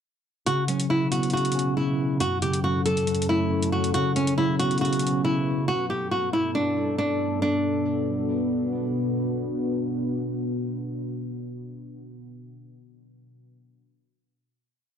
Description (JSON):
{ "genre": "hip hop, drill", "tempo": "138 BPM", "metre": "4/4", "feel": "half-time", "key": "B minor", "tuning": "A4 = 439 Hz", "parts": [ { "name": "flamenco guitar", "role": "melody", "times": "0.5-8.7 s", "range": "C#4 to A4", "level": "-25 LUFS", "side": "equal", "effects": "tape echo" }, { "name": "mellow tine electric piano", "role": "accompaniment", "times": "0.5-5.7 s", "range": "F#2 to C#4", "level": "-25 LUFS", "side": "equal", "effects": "medium stereo tremolo" }, { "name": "deep dark ambient pad", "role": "sustained chords", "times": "1.2-11.7 s", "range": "F#2 to B4", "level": "-29 LUFS", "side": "left 1 dB", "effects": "chorus, built-in reverb" }, { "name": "electronic hi-hat", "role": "drums", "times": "0.5-5.1 s", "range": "none", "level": "-33 LUFS", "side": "equal", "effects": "vintage 12-bit sampler grit" } ], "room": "light reverb", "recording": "dry, gritty hardware recording", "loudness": "-23 LUFS", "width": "side -8 dB against mid", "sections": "0.5-7.4 breakdown; 7.4-10.9 final chord", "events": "none", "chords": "0.5 Bsus2; 2.2 F#m; 3.9 Bsus2; 5.7 Gadd9; 7.4 Bm" }